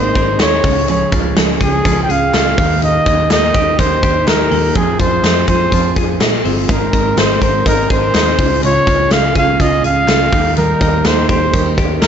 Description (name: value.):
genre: jangly indie pop.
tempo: 124 BPM.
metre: 4/4.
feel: straight.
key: unclear.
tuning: A4 = 439 Hz.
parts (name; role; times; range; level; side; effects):
breathy trumpet; melody; 0.0-12.1 s; Ab4 to G5; -16 LUFS; equal; none.
picked steel-string acoustic guitar; accompaniment; 0.0-12.1 s; Db3 to C5; -20 LUFS; right 7 dB; slapback echo.
twelve-string electric guitar; arpeggios; 0.0-12.1 s; Db3 to Bb4; -21 LUFS; left 6 dB; none.
vintage muted picked electric bass; bass; 0.0-12.1 s; G1 to Bb2; -20 LUFS; equal; none.
big rock drum kit; drums; 0.2-12.1 s; hi-hat, kick drum, snare drum; -15 LUFS; equal; none.
group handclap; percussion; 0.4-12.1 s; none; -32 LUFS; right 7 dB; none.
room: moderate lush hall reverb, RT60 2.3 s.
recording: big arena sound, nothing above 7.9 kHz.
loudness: -11 LUFS.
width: side -8 dB against mid.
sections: 0.0-12.1 A section.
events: none.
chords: 0.0 Abadd9; 0.6 Db; 2.6 Eb; 4.8 Fm; 6.7 Abadd9; 8.4 Db; 10.3 Eb.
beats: 0.40 | 0.88 1.37 1.85 2.33 | 2.82 3.30 3.79 4.27 | 4.75 5.24 5.72 6.21 | 6.69 7.17 7.66 8.14 | 8.63 9.11 9.60 10.08 | 10.56 11.05 11.54 12.02.